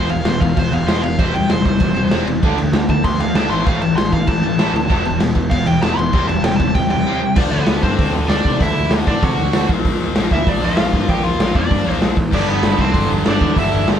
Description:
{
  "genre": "punk rock",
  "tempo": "194 BPM",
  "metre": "4/4",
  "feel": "straight",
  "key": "unclear",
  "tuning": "A4 = 440 Hz",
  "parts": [
    { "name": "overdriven electric guitar", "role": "melody", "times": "0.0-13.9 s", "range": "B3 to C6", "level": "-22 LUFS", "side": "equal", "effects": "none" },
    { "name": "distorted electric guitar", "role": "riff", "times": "0.0-14.0 s", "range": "E2 to D4", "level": "-22 LUFS", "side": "left 6 dB", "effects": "distortion" },
    { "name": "distorted electric guitar", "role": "riff", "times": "0.0-7.4, 12.3-14.0 s", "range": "E2 to D4", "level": "-22 LUFS", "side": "right 5 dB", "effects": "distortion" },
    { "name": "fuzz picked electric bass", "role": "bass", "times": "0.0-14.0 s", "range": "E1 to C3", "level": "-22 LUFS", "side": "equal", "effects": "overdrive" },
    { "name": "raw garage drum kit", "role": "drums", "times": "0.1-13.9 s", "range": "crash cymbal, hi-hat, kick drum, snare drum", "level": "-18 LUFS", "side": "equal", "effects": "none" }
  ],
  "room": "light reverb",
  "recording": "band playing live in one room",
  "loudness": "-14 LUFS",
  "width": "side -9 dB against mid",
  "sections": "0.0-7.4 A section; 7.4-14.0 B section",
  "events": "overdriven electric guitar solo 0.0-7.4",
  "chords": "0.0 E5; 1.2 C/E; 2.4 D5; 3.5 A5; 4.9 E5; 6.1 C/E; 7.4 D; 9.7 Bb; 12.3 G"
}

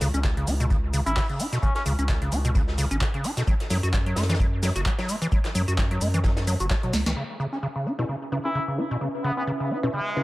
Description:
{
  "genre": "acid house",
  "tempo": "130 BPM",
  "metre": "4/4",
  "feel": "swing 56% on 16ths",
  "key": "C# minor",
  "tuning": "A4 = 439 Hz",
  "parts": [
    { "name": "acid bass, square", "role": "riff", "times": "0.0-10.2 s", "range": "B2 to F#4", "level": "-28 LUFS", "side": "equal", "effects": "sidechain pumping, dub echo" },
    { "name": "saturated sub bass", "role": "bass", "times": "0.0-7.1 s", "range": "F#1 to B2", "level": "-26 LUFS", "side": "equal", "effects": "tube saturation, sidechain pumping" },
    { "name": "booming analog drum machine", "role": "drums", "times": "0.0-7.1 s", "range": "handclaps, hi-hat, shaker, snare drum", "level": "-32 LUFS", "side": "equal", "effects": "none" },
    { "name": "vintage brush drum kit", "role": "drums", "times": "0.0-7.2 s", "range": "hi-hat, snare drum", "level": "-37 LUFS", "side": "left 1 dB", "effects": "sidechain pumping on hats, high-pass filter on hats, high-pass filter on snare, high-pass filter on room, dub echo" },
    { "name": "electronic kick drum", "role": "drums", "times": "0.2-6.8 s", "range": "none", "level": "-24 LUFS", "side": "equal", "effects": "none" },
    { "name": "trumpet with plunger mute", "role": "melody", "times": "1.1-1.8, 8.4-10.2 s", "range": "G#3 to E4", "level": "-30 LUFS", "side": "equal", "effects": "dub echo" },
    { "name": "granular cloud pad", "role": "texture", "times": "8.1-10.2 s", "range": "C#4 to E5", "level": "-32 LUFS", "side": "right 1 dB", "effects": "built-in reverb, sidechain pumping" },
    { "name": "filtered dub chord stab", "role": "stabs", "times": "8.0-10.2 s", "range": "C#4 to B4", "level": "-32 LUFS", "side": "left 1 dB", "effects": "chorus, dub echo" }
  ],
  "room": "light reverb",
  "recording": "echo-heavy mix",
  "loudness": "-22 LUFS",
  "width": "side -18 dB against mid",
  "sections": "0.0-7.2 A section; 7.2-10.2 B section",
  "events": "drum fill 6.9; band accent 7.0",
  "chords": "0.0 N.C.; 7.2 C#m7"
}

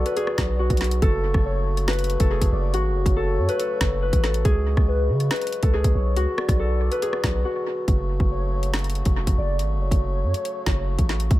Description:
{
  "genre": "hip hop, drill",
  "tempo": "140 BPM",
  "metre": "4/4",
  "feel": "half-time",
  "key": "F# minor",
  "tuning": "A4 = 440 Hz",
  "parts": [
    { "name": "Celtic harp", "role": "melody", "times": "0.0-9.9 s", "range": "F#4 to B4", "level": "-26 LUFS", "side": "left 1 dB", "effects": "low-pass filter, analog delay" },
    { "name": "warm velvety synth lead", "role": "second line", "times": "0.0-11.3 s", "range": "B4 to D5", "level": "-33 LUFS", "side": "left 1 dB", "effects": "chorus, analog delay" },
    { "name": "hand-pumped harmonium", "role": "sustained chords", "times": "0.0-11.4 s", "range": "C#3 to F#4", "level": "-34 LUFS", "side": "equal", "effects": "none" },
    { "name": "long sustained 808-style bass", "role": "bass", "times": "0.0-11.4 s", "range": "E#1 to C#3", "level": "-23 LUFS", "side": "equal", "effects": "none" },
    { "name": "drill drum kit", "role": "drums", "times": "0.1-11.4 s", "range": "hi-hat, kick drum, rim click, snare drum", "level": "-22 LUFS", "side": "equal", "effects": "none" }
  ],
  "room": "little or no reverb",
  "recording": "echo-heavy mix",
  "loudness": "-20 LUFS",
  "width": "side -16 dB against mid",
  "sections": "0.0-7.9 A section; 7.9-11.4 B section",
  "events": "break 7.5-7.9",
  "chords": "0.0 Bm; 1.0 F#m; 4.5 C#sus4; 6.2 Bm; 7.9 F#m"
}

